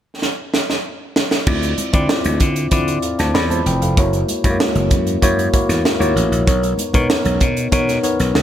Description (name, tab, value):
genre	polished 1980s jazz-funk pop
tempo	96 BPM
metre	4/4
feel	straight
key	unclear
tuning	A4 = 441 Hz
part	crisp fusion drum kit	drums	0.2-8.4 s	crash cymbal, hi-hat, kick drum, snare drum	-18 LUFS	right 1 dB	gated reverb
part	mellow tine electric piano	accompaniment	1.5-8.4 s	G#3 to B5	-19 LUFS	left 1 dB	wide subtle chorus
part	slap bass	bass	1.5-8.4 s	F1 to D3	-19 LUFS	equal	none
part	congas	percussion	1.6-8.0 s	none	-32 LUFS	right 2 dB	none
room	light reverb, studio reverb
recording	none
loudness	-15 LUFS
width	side -10 dB against mid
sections	0.0-1.5 A section; 1.5-8.4 B section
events	drum fill 0.2-1.5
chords	0.0 N.C.; 1.5 Dm9; 4.0 F#7; 6.5 Bmaj9